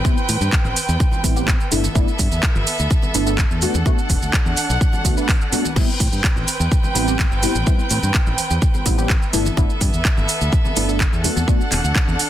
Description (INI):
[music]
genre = filtered disco house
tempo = 126 BPM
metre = 4/4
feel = straight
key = A dorian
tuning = A4 = 439 Hz
[part]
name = funky polysynth comp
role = accompaniment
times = 0.0-11.6 s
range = G3 to B4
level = -24 LUFS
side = equal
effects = chorus, phaser, sidechain pumping
[part]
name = rich studio violin section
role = sustained chords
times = 0.0-12.3 s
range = B3 to G5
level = -25 LUFS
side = right 2 dB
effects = sidechain pumping
[part]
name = electronic kick drum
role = drums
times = 0.0-12.1 s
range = none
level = -18 LUFS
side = equal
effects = none
[part]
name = maracas and congas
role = percussion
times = 0.0-12.3 s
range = none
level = -31 LUFS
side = left 3 dB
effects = sidechain pumping on perc
[part]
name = house drum kit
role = drums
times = 0.1-12.3 s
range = crash cymbal, handclaps, hi-hat, shaker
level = -23 LUFS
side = right 2 dB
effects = sidechain pumping on hats, sidechain pumping on perc, sidechain pumping on cymbals
[part]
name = modern bright fingered electric bass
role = bass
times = 0.3-12.2 s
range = E1 to A2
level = -22 LUFS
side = equal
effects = sidechain pumping
[sound]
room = digital ambience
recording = dense, heavily limited modern master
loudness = -16 LUFS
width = side -12 dB against mid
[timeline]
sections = 0.0-12.3 A section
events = none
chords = 0.0 Am9; 1.7 G69; 3.6 E9sus4 (rootless); 5.8 Am9; 9.3 G69; 11.2 E9sus4